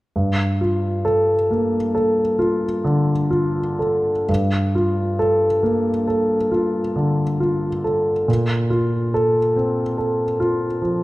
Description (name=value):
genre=classical, impressionist solo piano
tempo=38-49 BPM (dotted quarters)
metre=9/8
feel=rubato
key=G minor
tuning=A4 = 440 Hz
part: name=clear concert grand piano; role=solo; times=0.2-11.0 s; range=G2 to A4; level=-17 LUFS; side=equal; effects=none
room=wet recital hall reverb, RT60 1.7 s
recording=none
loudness=-17 LUFS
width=side -18 dB against mid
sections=0.1-4.3 A section; 4.3-11.0 B section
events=none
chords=0.1 Gm9; 8.3 Bbsus2